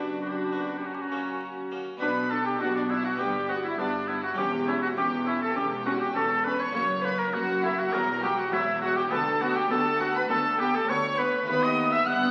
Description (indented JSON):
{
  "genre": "classical, baroque-style concerto movement with solo episodes",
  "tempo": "101 BPM",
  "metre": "4/4",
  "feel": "straight",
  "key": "B minor",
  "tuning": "A4 = 445 Hz",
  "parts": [
    { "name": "warm chamber violin section", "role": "melody", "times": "0.0-12.3 s", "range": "D5 to F#6", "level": "-36 LUFS", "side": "equal", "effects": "none" },
    { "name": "dark studio violin section", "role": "second line", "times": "0.0-12.3 s", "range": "D4 to F#5", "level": "-33 LUFS", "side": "equal", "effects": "none" },
    { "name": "harpsichord", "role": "accompaniment", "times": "0.0-12.3 s", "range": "D2 to G4", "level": "-42 LUFS", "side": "equal", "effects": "none" },
    { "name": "warm chamber viola section", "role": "accompaniment", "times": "0.0-12.3 s", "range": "F#3 to D4", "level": "-36 LUFS", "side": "equal", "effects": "none" },
    { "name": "dark chamber cello section", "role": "bass", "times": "0.0-12.3 s", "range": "D2 to B2", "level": "-37 LUFS", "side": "equal", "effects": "none" },
    { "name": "rich chamber double bass section", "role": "bass", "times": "0.0-12.3 s", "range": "E1 to D#2", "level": "-45 LUFS", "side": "equal", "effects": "none" },
    { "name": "warm oboe", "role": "melody", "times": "0.2-12.3 s", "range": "D4 to F#5", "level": "-31 LUFS", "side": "equal", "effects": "none" }
  ],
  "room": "wet recital hall reverb, RT60 1.5 s",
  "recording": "very old 78 rpm record, vinyl crackle",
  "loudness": "-27 LUFS",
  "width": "mono",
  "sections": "0.0-2.0 A section; 2.0-12.3 B section",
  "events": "none",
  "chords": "0.0 Bm/F#; 0.8 F#; 2.0 Bm; 3.2 G; 4.4 C#dim/E; 6.8 F#; 7.9 F#5/E; 9.1 Bm/D; 11.5 B7",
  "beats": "0.21 0.81 1.41 | 2.01 2.61 3.20 3.79 | 4.39 4.98 5.57 6.16 | 6.75 7.34 7.94 8.53 | 9.12 9.71 10.30 10.89 | 11.48 12.07"
}